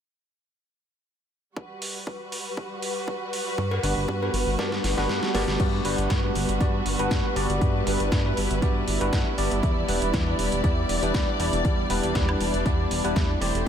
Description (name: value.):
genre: nu-disco, nu disco.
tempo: 119 BPM.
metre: 4/4.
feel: swing 53% on 16ths.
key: G major.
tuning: A4 = 440 Hz.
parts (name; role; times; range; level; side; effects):
rich studio string section; sustained chords; 1.6-13.7 s; G3 to D5; -30 LUFS; left 1 dB; sidechain pumping.
electronic kick drum; drums; 1.6-13.3 s; none; -26 LUFS; equal; overdrive, high-pass filter on kick.
dusty soul sampler-style drum kit; drums; 1.8-13.6 s; crash cymbal, hi-hat, snare drum, woodblock; -32 LUFS; right 1 dB; overdrive.
chorused synth bass; bass; 3.6-13.6 s; E1 to G2; -28 LUFS; equal; tube saturation.
cowbell; percussion; 3.7-5.5 s; none; -37 LUFS; left 3 dB; none.
bell-like tine electric piano; accompaniment; 3.8-13.7 s; G3 to D5; -27 LUFS; equal; analog chorus, sidechain pumping, ping-pong delay.
room: moderate huge ambient reverb, RT60 8.1 s.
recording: dreamy mix soaked in reverb.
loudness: -22 LUFS.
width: side -8 dB against mid.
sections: 1.6-5.6 A section; 5.6-13.7 B section.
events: drum fill 4.6-5.6; kick drops out 5.1-5.6.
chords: 1.6 Gmaj7; 9.6 Em7.